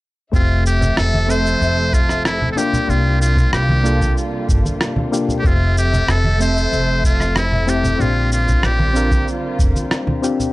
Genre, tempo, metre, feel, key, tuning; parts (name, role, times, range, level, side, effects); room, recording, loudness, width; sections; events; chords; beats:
sunset chillout; 94 BPM; 4/4; straight; F major; A4 = 436 Hz
trumpet with metal mute; melody; 0.3-9.3 s; E4 to C5; -21 LUFS; equal; analog delay
soft electric-piano-like synth keys; accompaniment; 0.3-10.5 s; A3 to E5; -22 LUFS; moving between left 4 dB and right 3 dB; chorus, auto-pan, low-pass filter
dark studio string section; sustained chords; 0.3-10.5 s; C3 to E5; -26 LUFS; left 1 dB
upright bass; bass; 0.3-9.7 s; F1 to C2; -18 LUFS; equal
electronic cabasa and rim click; drums; 0.3-10.5 s; -23 LUFS; equal; overdrive
electronic kick drum; drums; 0.3-9.7 s; -18 LUFS; equal
congas; percussion; 0.8-10.5 s; -23 LUFS; right 1 dB
small room reverb; dry, gritty hardware recording, cassette tape; -14 LUFS; side -19 dB against mid
0.3-10.5 A section
0.3 Fmaj7; 2.6 C7sus4; 5.4 Fmaj7; 8.0 Bb6
| 0.34 0.98 1.62 2.25 | 2.89 3.53 4.17 4.81 | 5.45 6.08 6.72 7.36 | 8.00 8.64 9.28 9.91